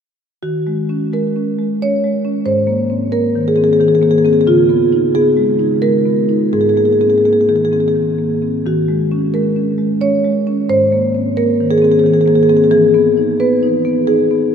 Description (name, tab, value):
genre	classical, contemporary piece for solo marimba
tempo	88 BPM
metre	3/4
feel	rubato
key	Eb dorian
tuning	A4 = 443 Hz
part	marimba with soft mallets	solo	0.4-14.5 s	Ab2 to Db5	-12 LUFS	equal	none
room	wet cathedral reverb, RT60 6.5 s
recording	in a vast, echoing space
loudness	-12 LUFS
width	side -7 dB against mid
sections	0.4-14.5 A section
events	none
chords	0.4 Ebm7; 2.5 Abadd9; 4.5 Db9; 6.5 Abadd9; 8.7 Ebm7; 10.7 Abadd9; 12.7 Emaj7